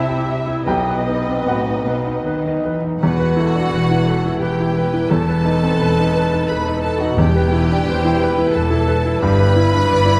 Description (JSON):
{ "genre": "classical, romantic movement for piano and orchestra", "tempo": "73-90 BPM", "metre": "3/4", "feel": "rubato", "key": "E minor", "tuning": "A4 = 439 Hz", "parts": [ { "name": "clear baby grand piano", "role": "melody", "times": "0.0-10.2 s", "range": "B1 to A5", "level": "-21 LUFS", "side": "equal", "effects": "none" }, { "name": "clear studio violin section", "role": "melody", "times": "0.0-10.2 s", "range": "D#5 to B5", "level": "-30 LUFS", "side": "equal", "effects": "none" }, { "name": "rich studio violin section", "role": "second line", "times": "0.0-10.2 s", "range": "B3 to B4", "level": "-26 LUFS", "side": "equal", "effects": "none" }, { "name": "clear studio viola section", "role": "accompaniment", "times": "0.0-10.2 s", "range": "G4 to E5", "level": "-28 LUFS", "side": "equal", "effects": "none" }, { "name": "clear studio cello section", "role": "bass", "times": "0.0-10.2 s", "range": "E2 to E3", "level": "-24 LUFS", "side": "equal", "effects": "none" }, { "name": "timpani", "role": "percussion", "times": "0.7-1.8, 7.2-8.2 s", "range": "E2 to B2", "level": "-27 LUFS", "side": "equal", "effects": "none" }, { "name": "rich studio double bass section", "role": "bass", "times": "3.0-10.2 s", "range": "E1 to G1", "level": "-26 LUFS", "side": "equal", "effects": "none" } ], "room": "wet concert hall reverb, RT60 2.2 s", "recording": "none", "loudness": "-17 LUFS", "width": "mono", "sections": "0.0-3.0 A section; 3.0-10.2 A section", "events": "none", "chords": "0.0 C; 0.7 B; 3.0 Em; 5.1 B7/E; 7.2 Em; 9.2 Em/G" }